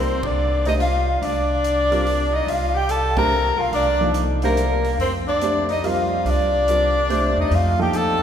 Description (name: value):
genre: modal jazz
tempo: 143 BPM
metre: 3/4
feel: swing 65% on 8ths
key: C dorian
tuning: A4 = 440 Hz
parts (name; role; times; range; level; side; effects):
- warm soprano saxophone; melody; 0.0-8.2 s; Bb4 to Bb5; -21 LUFS; right 1 dB; none
- edgy tenor saxophone; second line; 0.0-8.2 s; Bb3 to Bb4; -24 LUFS; left 4 dB; none
- upright bass; bass; 0.0-8.2 s; B1 to F2; -23 LUFS; equal; none
- vintage drum kit; drums; 0.2-8.1 s; hi-hat, kick drum, ride cymbal; -36 LUFS; equal; none
- warm grand piano; accompaniment; 0.7-8.2 s; F3 to C5; -26 LUFS; right 2 dB; none
room: wet church reverb, RT60 3.0 s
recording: recorded in a church or concert hall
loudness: -17 LUFS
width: side -8 dB against mid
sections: 0.0-8.2 A section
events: band accent 0.2, 3.1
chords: 0.0 C13sus4; 5.0 F13sus4